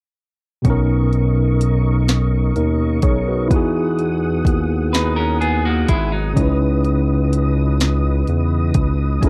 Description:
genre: slow six-eight R&B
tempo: 42 BPM (dotted quarters)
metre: 6/8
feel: straight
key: C# dorian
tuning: A4 = 442 Hz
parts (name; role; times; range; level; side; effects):
- tine electric piano; accompaniment; 0.6-9.3 s; B2 to C#5; -22 LUFS; equal; none
- smooth R&B drum kit; drums; 0.6-9.3 s; hi-hat, kick drum, snare drum; -20 LUFS; equal; overdrive
- tonewheel organ; sustained chords; 0.7-9.3 s; G#4 to D#6; -33 LUFS; equal; overdrive, chorus vibrato, slow rotary speaker
- smooth synth bass; bass; 0.7-9.3 s; F#1 to E2; -21 LUFS; equal; none
- clean electric guitar; second line; 4.9-6.6 s; F#3 to B4; -24 LUFS; equal; none
room: little or no reverb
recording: dry, close 1970s-style studio recording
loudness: -18 LUFS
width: mono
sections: 0.7-9.3 A section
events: stop 0.0-0.7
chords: 0.0 N.C.; 0.7 Bmaj9; 3.5 Emaj9; 6.4 C#m9

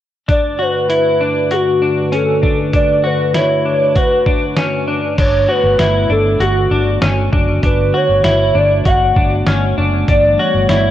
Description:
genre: dream pop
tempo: 98 BPM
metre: 4/4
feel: straight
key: unclear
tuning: A4 = 440 Hz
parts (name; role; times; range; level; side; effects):
- warbly nostalgic lead; melody; 0.3-10.9 s; F#4 to F#5; -15 LUFS; equal; chorus, tremolo, ping-pong delay
- warbly tape-like pad; sustained chords; 0.5-10.9 s; G2 to B4; -21 LUFS; left 1 dB; chorus, built-in reverb
- semi-hollow electric guitar; arpeggios; 0.3-10.9 s; C#4 to F#4; -18 LUFS; left 1 dB; analog chorus, ping-pong delay
- lo-fi sampler-style drum kit; drums; 0.3-10.8 s; crash cymbal, hi-hat, kick drum, snare drum; -17 LUFS; equal; none
- vintage muted fingered electric bass; bass; 5.2-10.9 s; F#1 to G1; -17 LUFS; equal; tube saturation
room: moderate concert hall reverb, RT60 1.8 s, digital ambience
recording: worn, warbling old tape, cassette tape, warbly pitch drift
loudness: -12 LUFS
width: side -12 dB against mid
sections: 0.3-5.2 A section; 5.2-10.9 B section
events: none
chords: 0.3 D6/G; 5.2 D6; 10.1 G69

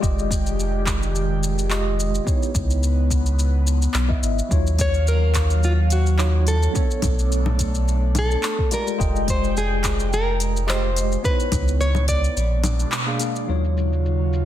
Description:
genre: sunset chillout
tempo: 107 BPM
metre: 4/4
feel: swing 54% on 16ths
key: unclear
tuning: A4 = 440 Hz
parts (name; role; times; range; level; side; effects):
- tine electric piano; accompaniment; 0.0-14.4 s; Gb3 to G5; -28 LUFS; moving between left 6 dB and right 6 dB; medium stereo tremolo, auto-pan, tape echo
- airy breathy pad; sustained chords; 0.0-14.4 s; Cb3 to G5; -30 LUFS; equal; chorus, phaser
- warm sub bass; bass; 0.0-14.4 s; F1 to Eb2; -20 LUFS; equal; none
- deep house drum kit; drums; 0.0-14.4 s; congas, handclaps, hi-hat, shaker; -28 LUFS; left 2 dB; low-pass filter on cymbals, low-pass filter on perc, low-pass filter on snare, low-pass filter on hats
- electronic kick drum; drums; 0.0-12.2 s; none; -24 LUFS; equal; none
- nylon-string guitar; melody; 4.8-13.2 s; F4 to D5; -26 LUFS; left 1 dB; digital delay
room: light reverb, digital ambience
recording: dense, heavily limited modern master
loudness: -18 LUFS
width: side -12 dB against mid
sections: 0.0-13.5 A section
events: band accent 12.9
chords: 0.0 Fm9; 2.3 Dbm9; 4.5 Ebm9; 6.8 Bm9; 8.7 Fm9; 11.2 Dbm9; 12.4 Bb7b9; 13.5 Ebm9

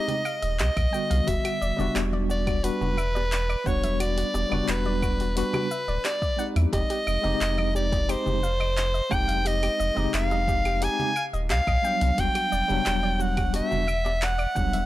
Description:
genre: sunset chillout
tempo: 88 BPM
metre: 4/4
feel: straight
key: unclear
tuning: A4 = 440 Hz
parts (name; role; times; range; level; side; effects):
- bright soprano saxophone; melody; 0.0-14.9 s; B4 to Ab5; -27 LUFS; equal; analog delay
- tine electric piano; accompaniment; 0.0-14.9 s; D3 to G4; -30 LUFS; left 1 dB; fast stereo tremolo, auto-pan, tape echo
- soft round pluck; arpeggios; 0.0-14.9 s; F#4 to G5; -36 LUFS; left 2 dB; chorus, cassette tape, tape echo
- deep house drum kit; drums; 0.1-14.9 s; cabasa, claves, handclaps, hi-hat; -33 LUFS; equal; none
- congas and bongos; percussion; 0.1-14.9 s; none; -36 LUFS; right 2 dB; none
- warm sub bass; bass; 0.4-14.9 s; D1 to E2; -27 LUFS; equal; none
- electronic kick drum; drums; 0.8-14.7 s; none; -29 LUFS; equal; none
room: digital ambience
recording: dry, gritty hardware recording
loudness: -22 LUFS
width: side -15 dB against mid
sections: 0.0-14.9 A section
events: none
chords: 0.0 Fm9; 1.3 Em9; 6.7 Fm9; 12.2 Em9

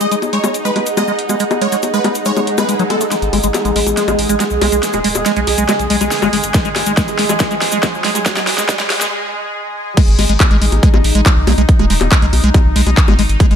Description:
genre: psychedelic trance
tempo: 140 BPM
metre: 4/4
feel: straight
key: G# phrygian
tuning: A4 = 437 Hz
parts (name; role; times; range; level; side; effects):
- supersaw stab; melody; 0.0-3.1 s; A4 to D#5; -22 LUFS; right 1 dB; phaser, sidechain pumping, dub echo
- bubbling stepped-filter texture; sustained chords; 0.0-13.6 s; G#3 to G#4; -21 LUFS; equal; chorus, built-in reverb, sidechain pumping
- liquid acid bass; riff; 0.0-13.5 s; F#3 to A3; -19 LUFS; moving between left 7 dB and right 7 dB; chorus, auto-pan, sidechain pumping, dub echo
- big-room dance drum kit; drums; 0.0-13.6 s; bongos, crash cymbal, handclaps, hi-hat, snare drum; -19 LUFS; left 3 dB; overdrive, high-pass filter on hats, low-pass filter on hats, small room reverb, high-pass filter on perc, low-pass filter on perc, high-pass filter on snare, low-pass filter on snare, high-pass filter on cymbals, low-pass filter on cymbals
- cabasa; percussion; 0.0-9.1 s; none; -26 LUFS; left 6 dB; none
- ethereal airy pad; texture; 0.0-9.1 s; G#4 to G#5; -22 LUFS; right 3 dB; ensemble chorus, built-in reverb, sidechain pumping
- swell and riser; sound effects; 2.4-9.1 s; none; -26 LUFS; right 2 dB; none
- round analog bass; bass; 3.2-13.6 s; D#1 to B1; -17 LUFS; equal; tube saturation
- electronic kick drum; drums; 6.5-13.5 s; none; -12 LUFS; equal; overdrive, small room reverb
room: light reverb, digital ambience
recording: high-pass filter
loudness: -12 LUFS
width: side -8 dB against mid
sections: 0.0-3.1 A section; 3.1-10.0 B section; 10.0-13.6 C section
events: filter sweep on acid bass 0.0-3.1, 3.1-10.0; swell 2.4-3.1; build-up 3.1-10.0; drum fill 3.1-9.1; riser 3.1-9.1; filter sweep 3.1-10.0; break 9.1-10.0; drop 10.0-13.6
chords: 0.0 G#5

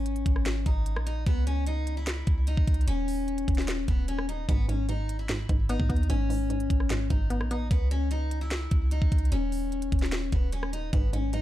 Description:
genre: hip hop, trap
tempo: 149 BPM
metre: 4/4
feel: half-time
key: G# minor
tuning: A4 = 437 Hz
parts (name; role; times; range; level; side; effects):
- picked steel-string acoustic guitar; melody; 0.0-11.4 s; B3 to E4; -33 LUFS; left 4 dB; tape echo
- clean 808-style bass; bass; 0.0-11.4 s; D#1 to G#2; -28 LUFS; equal; none
- trap drum kit; drums; 0.1-11.4 s; hi-hat, kick drum, rim click, snare drum; -28 LUFS; equal; none
- hollow square pluck; accompaniment; 4.5-7.7, 10.9-11.4 s; G#2 to B3; -33 LUFS; right 1 dB; chorus
room: digital ambience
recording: dark, warm production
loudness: -25 LUFS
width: side -14 dB against mid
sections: 0.0-11.4 A section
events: none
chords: 0.0 G#5; 1.3 C#m; 2.9 Badd9/D# (rootless); 4.5 G#m; 7.7 C#m; 9.3 Badd9/D# (rootless)

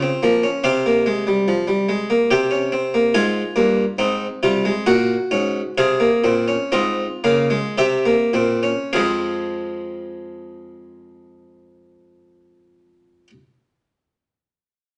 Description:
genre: classical, baroque-style 4-part fugue for harpsichord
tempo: 49-73 BPM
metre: 3/4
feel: straight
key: F minor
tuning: A4 = 440 Hz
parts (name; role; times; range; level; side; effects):
- harpsichord; solo; 0.0-13.3 s; F2 to Ab5; -19 LUFS; equal; none
room: wet studio reverb, RT60 0.9 s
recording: nothing above 10.8 kHz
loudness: -19 LUFS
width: mono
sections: 0.0-3.1 A section; 3.1-8.9 B section; 8.9-12.6 C section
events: slowing down 1.9-8.9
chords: 0.0 Bbm; 0.6 Csus4; 2.3 C5; 3.1 Fm; 4.9 Gb/Bb; 5.8 Fm; 7.8 C7; 8.9 Fm

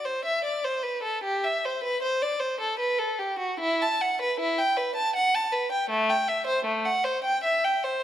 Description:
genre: classical, baroque-style suite movement for unaccompanied violin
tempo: 72-81 BPM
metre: 3/4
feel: rubato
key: G major, E minor from 3.6 s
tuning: A4 = 441 Hz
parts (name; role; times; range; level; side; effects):
- rich violin; solo; 0.0-8.0 s; A3 to A5; -24 LUFS; equal; none
room: moderate recital hall reverb, RT60 1.4 s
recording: none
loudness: -24 LUFS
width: side -11 dB against mid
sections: 0.0-8.0 A section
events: none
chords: none

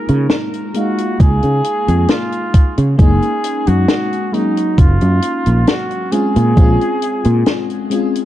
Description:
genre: vaporwave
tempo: 67 BPM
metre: 4/4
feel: straight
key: unclear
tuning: A4 = 440 Hz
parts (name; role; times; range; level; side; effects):
- warm flugelhorn; melody; 0.0-7.9 s; Eb4 to Bb4; -21 LUFS; right 1 dB; tape echo
- FM electric piano with soft pad layer; accompaniment; 0.0-8.2 s; Gb3 to F5; -19 LUFS; left 2 dB; lush chorus
- fretless electric bass; bass; 0.1-7.4 s; Gb1 to Db3; -13 LUFS; equal; tube saturation, wide subtle chorus
- compact cocktail drum kit; drums; 0.1-8.2 s; hi-hat, snare drum; -19 LUFS; left 1 dB; small room ambience
- electronic kick drum; drums; 1.2-6.8 s; none; -9 LUFS; equal; small room ambience
room: light reverb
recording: dark, warm production, cassette tape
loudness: -12 LUFS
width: side -13 dB against mid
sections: 0.0-8.2 A section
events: none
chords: 0.0 Db69; 3.0 Gb6; 6.1 Bbm9

